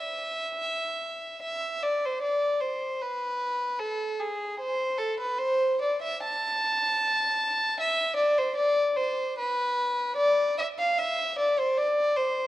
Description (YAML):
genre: classical, baroque-style suite movement for unaccompanied violin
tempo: 75 BPM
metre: 4/4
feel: rubato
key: A minor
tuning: A4 = 440 Hz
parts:
  - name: rich violin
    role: solo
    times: 0.0-12.5 s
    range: G#4 to A5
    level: -25 LUFS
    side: equal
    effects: none
room: moderate scoring stage reverb, RT60 1.7 s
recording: worn, warbling old tape, cassette tape, warbly pitch drift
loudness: -25 LUFS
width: side -14 dB against mid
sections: 0.0-12.5 A section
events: none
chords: none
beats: 0.62 | 1.42 2.21 3.00 3.79 | 4.58 5.38 6.20 7.00 | 7.78 8.57 9.38 10.18 | 10.99 11.79